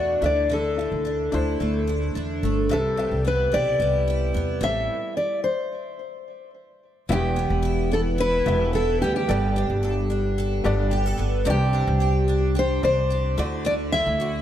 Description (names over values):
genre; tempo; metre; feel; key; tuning
acoustic pop; 110 BPM; 4/4; straight; unclear; A4 = 440 Hz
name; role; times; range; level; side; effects
fingerpicked steel-string acoustic guitar; melody; 0.0-14.4 s; G4 to E5; -24 LUFS; left 1 dB; ping-pong delay
clear concert grand piano; accompaniment; 0.0-14.4 s; A3 to G5; -32 LUFS; left 2 dB; none
picked twelve-string acoustic guitar; accompaniment; 0.0-14.4 s; E2 to A4; -28 LUFS; right 1 dB; double-tracked left and right
upright bass; bass; 0.0-14.4 s; E1 to E2; -25 LUFS; equal; none
room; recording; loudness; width
light reverb, small room ambience; none; -20 LUFS; side -11 dB against mid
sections
0.0-7.1 A section; 7.1-14.4 B section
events
stop 4.9-7.1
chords
0.2 Dsus2; 2.7 Cmaj7; 4.6 Am7; 7.1 Em; 9.3 Gadd9; 11.5 Csus2; 13.4 Dadd9